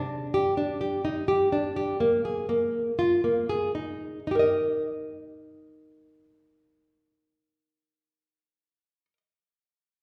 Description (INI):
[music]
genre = contemporary instrumental, contemporary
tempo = 226-256 BPM (eighths)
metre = 9/8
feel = straight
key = Eb major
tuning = A4 = 440 Hz
[part]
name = nylon-string guitar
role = arpeggios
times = 0.0-9.2 s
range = Bb3 to Eb5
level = -27 LUFS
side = equal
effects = none
[sound]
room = wet recital hall reverb, RT60 1.6 s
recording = recorded in a church or concert hall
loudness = -26 LUFS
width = mono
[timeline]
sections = 0.0-4.3 A section; 4.3-9.1 B section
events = slowing down 0.3-4.3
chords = 0.0 Ebmaj7 (rootless); 2.0 Bb7sus4; 4.3 Eb5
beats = 0.10 0.34 0.57 0.81 1.05 1.28 1.52 1.76 | 2.00 2.25 2.49 2.74 2.99 3.24 3.50 3.75 4.02 | 4.28 4.54 4.81 5.08 5.34 5.61 5.87 6.14 6.40 | 6.67 6.94 7.20 7.47 7.73 8.00 8.27 8.53 8.80